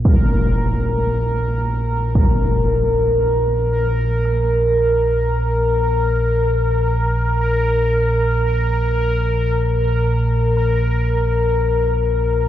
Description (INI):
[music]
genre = dark ambient drone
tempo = free time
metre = none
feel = none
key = unclear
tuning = A4 = 439 Hz
[part]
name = deep rumbling drone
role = drone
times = 0.0-12.5 s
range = Bb1 to Bb2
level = -19 LUFS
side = equal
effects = built-in reverb
[part]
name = impact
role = percussion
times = 0.1-2.4 s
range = none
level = -20 LUFS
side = equal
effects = low-pass filter on sfx
[part]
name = bubbling stepped-filter texture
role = texture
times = 0.1-12.5 s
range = Bb4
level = -19 LUFS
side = left 1 dB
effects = chorus, built-in reverb
[sound]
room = wet huge ambient reverb, RT60 7.6 s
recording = worn, warbling old tape, cassette tape, warbly pitch drift, nothing above 7.7 kHz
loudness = -15 LUFS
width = side -12 dB against mid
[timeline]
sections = 0.0-12.5 A section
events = none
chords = none